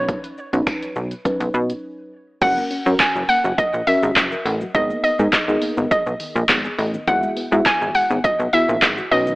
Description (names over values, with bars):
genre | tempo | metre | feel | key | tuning
dance-pop | 103 BPM | 4/4 | straight | F# mixolydian | A4 = 440 Hz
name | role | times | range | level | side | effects
hollow square pluck | melody | 0.0-9.4 s | C#5 to G#5 | -20 LUFS | equal | chorus, tape echo
deep mellow chord stab | accompaniment | 0.0-9.4 s | F#3 to E5 | -24 LUFS | equal | chorus, sidechain pumping
plucky analog bass | bass | 0.0-9.4 s | F#1 to B2 | -22 LUFS | equal | sidechain pumping
punchy analog drum machine | drums | 0.1-9.4 s | crash cymbal, finger snaps, handclaps, hi-hat, kick drum, shaker | -20 LUFS | equal | overdrive
tambourine | percussion | 0.7-9.0 s | none | -41 LUFS | right 2 dB | none
soft round pluck | arpeggios | 2.4-9.4 s | D#3 to F#5 | -30 LUFS | left 1 dB | chorus, sidechain pumping, tape echo
room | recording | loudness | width
light reverb, digital ambience | AM radio sound | -16 LUFS | side -21 dB against mid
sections
0.0-2.4 A section; 2.4-9.4 B section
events
break 1.8-2.4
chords
0.0 Badd9; 2.4 F#; 4.7 G#madd9; 7.1 Eadd9/G#